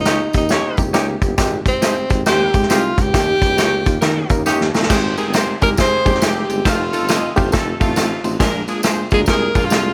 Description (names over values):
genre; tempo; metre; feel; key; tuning
uptempo 1960s-style soul; 137 BPM; 4/4; swing 64% on 8ths; Ab major; A4 = 440 Hz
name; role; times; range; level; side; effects
breathy tenor saxophone; melody; 0.0-9.9 s; C4 to C5; -21 LUFS; equal; none
reed electric piano; accompaniment; 0.0-9.9 s; Ab3 to C5; -24 LUFS; equal; fast tremolo
warm tuba; bass; 0.0-9.9 s; F1 to Eb3; -26 LUFS; equal; none
clean electric guitar; stabs; 0.1-4.6 s; Eb4 to Db5; -26 LUFS; equal; warbly pitch drift
vintage drum kit; drums; 0.1-9.8 s; crash cymbal, hi-hat, kick drum, ride cymbal, snare drum; -20 LUFS; equal; none
tambourine; percussion; 0.1-9.8 s; none; -34 LUFS; equal; none
edgy saxophone section; second line; 0.5-9.9 s; C3 to Eb5; -27 LUFS; equal; none
room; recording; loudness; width
light reverb; none; -17 LUFS; mono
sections
0.0-4.9 A section; 4.9-9.9 B section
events
drum fill 4.5-4.9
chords
0.0 Eb7; 1.4 Abmaj7; 3.1 Eb7; 4.9 Abmaj7; 6.6 F7; 8.4 Bb7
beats
0.06 0.50 0.94 | 1.38 1.82 2.26 2.70 | 3.14 3.58 4.02 4.46 | 4.89 5.33 5.77 6.21 | 6.65 7.09 7.53 7.96 | 8.40 8.84 9.28 9.71